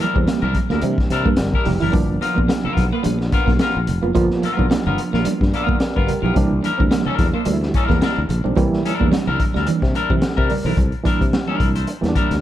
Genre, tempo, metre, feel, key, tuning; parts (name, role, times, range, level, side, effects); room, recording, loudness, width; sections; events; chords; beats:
funk; 108 BPM; 4/4; swing 56% on 16ths; A4 = 440 Hz
semi-hollow electric guitar; accompaniment; 0.0-12.3 s; B3 to C5; -24 LUFS; left 4 dB; spring reverb
reed electric piano; stabs; 0.0-12.4 s; D3 to D5; -23 LUFS; right 3 dB; fast tremolo
crunchy breakbeat drum kit; drums; 0.0-12.4 s; hi-hat, kick drum, snare drum; -20 LUFS; left 1 dB
clean electric guitar; riff; 0.1-10.7 s; E3 to C4; -25 LUFS; right 5 dB; tube saturation
sustaining fretless electric bass; bass; 0.2-12.4 s; F1 to C3; -22 LUFS; left 1 dB
congas; percussion; 0.3-12.4 s; -30 LUFS; right 5 dB
little or no reverb; dark, warm production; -16 LUFS; side -12 dB against mid
0.0-10.8 A section; 10.8-12.4 B section
reed electric piano fill 5.3-6.4
0.0 C9; 1.9 G7#9; 6.4 C9
0.27 0.82 1.38 | 1.93 2.49 3.04 3.60 | 4.15 4.71 5.26 5.81 | 6.37 6.92 7.47 8.02 | 8.58 9.13 9.68 10.23 | 10.78 11.34 11.89